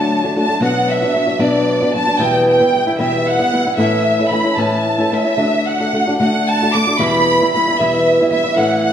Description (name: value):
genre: mexican folk, mariachi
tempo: 76 BPM (dotted quarters)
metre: 6/8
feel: rubato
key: unclear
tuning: A4 = 440 Hz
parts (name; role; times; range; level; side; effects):
- warm studio violin section; melody; 0.0-8.9 s; D5 to D6; -16 LUFS; right 1 dB; none
- flamenco guitar; accompaniment; 0.0-8.9 s; E2 to F#4; -15 LUFS; equal; none
room: wet recital hall reverb, RT60 1.7 s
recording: none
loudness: -13 LUFS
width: side -9 dB against mid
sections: 0.0-8.9 A section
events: none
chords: 0.0 D; 0.6 Bm; 2.2 Em; 3.8 A; 5.4 D; 7.0 Em